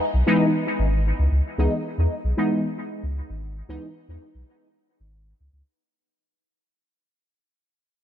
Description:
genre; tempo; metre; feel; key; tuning
dub techno; 114 BPM; 4/4; straight; C# minor; A4 = 442 Hz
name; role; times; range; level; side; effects
warm sub bass; bass; 0.1-5.6 s; G#1 to E2; -22 LUFS; equal; none
resonant sweep polysynth; stabs; 0.3-3.8 s; E3 to D#4; -23 LUFS; left 1 dB; chorus, phaser, vintage 12-bit sampler grit, dub echo
room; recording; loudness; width
light reverb, digital ambience; none; -20 LUFS; side -10 dB against mid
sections
0.0-5.8 A section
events
fade-out 0.0-5.8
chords
0.0 C#m7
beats
0.00 0.53 1.05 | 1.58 2.10 2.63 3.16 | 3.68 4.21 4.74 5.26

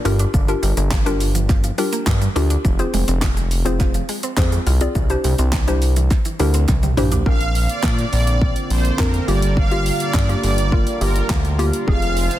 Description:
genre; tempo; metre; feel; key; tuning
dance-pop; 104 BPM; 4/4; straight; unclear; A4 = 435 Hz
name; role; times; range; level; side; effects
hollow square pluck; accompaniment; 0.0-12.4 s; Bb3 to D5; -24 LUFS; left 2 dB; chorus, sidechain pumping
mallet-like synth pluck; arpeggios; 0.1-7.2 s; E3 to F4; -28 LUFS; right 1 dB; chorus, phaser, sidechain pumping, ping-pong delay
fat analog bass; bass; 0.1-12.3 s; F1 to Bb2; -19 LUFS; equal; sidechain pumping
pop drum kit; drums; 0.1-12.4 s; handclaps, hi-hat, kick drum, shaker, snare drum, toms; -21 LUFS; equal; none
group handclap; percussion; 0.9-11.4 s; none; -37 LUFS; right 6 dB; none
supersaw pad; melody; 7.3-12.4 s; Bb4 to F5; -24 LUFS; right 2 dB; sidechain pumping, ping-pong delay
chorused pulse-width pad; sustained chords; 7.3-12.4 s; C3 to F4; -27 LUFS; right 1 dB; sidechain pumping
room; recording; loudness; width
digital ambience; dense, heavily limited modern master; -16 LUFS; side -13 dB against mid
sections
0.0-7.3 A section; 7.3-12.4 B section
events
drum fill 6.7-7.3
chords
0.1 Gm7; 2.6 Fm; 5.0 Cadd9; 7.3 Bbadd9; 9.3 Gm7; 11.9 Fm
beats
| 0.34 0.92 1.49 2.07 | 2.65 3.22 3.80 4.38 | 4.96 5.53 6.11 6.69 | 7.26 7.84 8.42 8.99 | 9.57 10.15 10.72 11.30 | 11.88

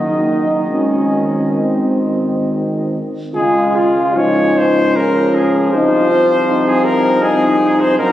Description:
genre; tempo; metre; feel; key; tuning
classical, hymn-like piece for brass band; 66-81 BPM; 3/4; rubato; Db major; A4 = 438 Hz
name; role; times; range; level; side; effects
dark cornet; melody; 0.0-8.1 s; F4 to Eb5; -18 LUFS; left 2 dB; none
mellow French horn section; second line; 0.0-8.1 s; C4 to Ab4; -19 LUFS; right 1 dB; none
clear trombone; accompaniment; 0.0-8.1 s; Eb3 to Ab3; -20 LUFS; right 1 dB; none
mellow euphonium; accompaniment; 0.0-8.1 s; Ab3 to F4; -18 LUFS; left 1 dB; none
mellow tuba; bass; 0.0-8.1 s; Gb1 to Db2; -21 LUFS; equal; none
room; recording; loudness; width
wet church reverb, RT60 2.6 s; recorded on a phone in the room, club reverb, compression; -12 LUFS; side -13 dB against mid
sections
0.0-3.4 A section; 3.4-8.1 B section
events
none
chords
0.0 Ebm/Gb; 0.7 Ab; 3.4 Db; 5.7 Cmadd11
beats
| 0.69 1.60 2.49 | 3.35 4.16 4.96 | 5.73 6.47 7.22 | 7.99

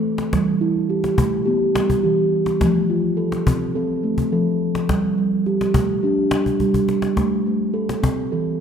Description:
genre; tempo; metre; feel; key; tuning
world meditative, meditative tuned percussion; 105 BPM; 4/4; straight; A minor; A4 = 437 Hz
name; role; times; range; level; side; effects
steel tongue drum; arpeggios; 0.0-8.6 s; E3 to A4; -18 LUFS; right 1 dB; none
cajon; percussion; 0.2-8.2 s; none; -23 LUFS; left 2 dB; none
room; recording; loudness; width
wet echo chamber reverb, RT60 2.1 s; none; -17 LUFS; side -7 dB against mid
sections
0.0-8.6 A section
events
drum fill 6.5-7.2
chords
0.3 Em; 2.6 F; 4.9 G5; 7.2 Am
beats
| 0.33 0.90 1.47 2.04 | 2.61 3.18 3.75 4.32 | 4.89 5.46 6.03 6.60 | 7.17 7.74 8.31

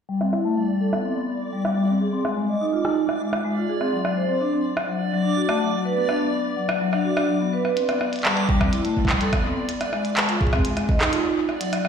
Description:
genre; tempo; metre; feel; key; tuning
IDM; 125 BPM; 4/4; straight; A dorian; A4 = 441 Hz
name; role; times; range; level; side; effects
vibraphone with medium hard mallets; arpeggios; 0.1-11.9 s; F#3 to Eb5; -22 LUFS; left 1 dB; vintage 12-bit sampler grit, low-pass filter, tape echo
backwards swelling texture; texture; 0.6-11.9 s; D5; -31 LUFS; right 2 dB; built-in reverb
glitchy drum kit; drums; 0.2-11.9 s; handclaps, hi-hat, rim click; -26 LUFS; equal; low-pass filter on snare, low-pass filter on hats, low-pass filter on room, ping-pong delay
electronic kick drum; drums; 8.5-11.0 s; none; -22 LUFS; right 1 dB; none
room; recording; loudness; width
wet lush hall reverb, RT60 1.9 s; played on a big sound system in a bare room, stone room reverb; -20 LUFS; side -7 dB against mid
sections
0.1-11.9 A section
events
filter sweep on drum 0.1-11.9; filter sweep on vibraphone 0.1-11.9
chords
0.1 Am7 (rootless); 2.0 Fm7 (rootless); 3.9 D7; 5.8 Bm; 7.8 Am9 (rootless); 9.7 Fm7 (rootless)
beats
| 0.09 0.57 1.05 1.53 | 2.01 2.49 2.97 3.45 | 3.93 4.41 4.89 5.37 | 5.85 6.33 6.81 7.29 | 7.77 8.25 8.73 9.21 | 9.69 10.17 10.65 11.13 | 11.61

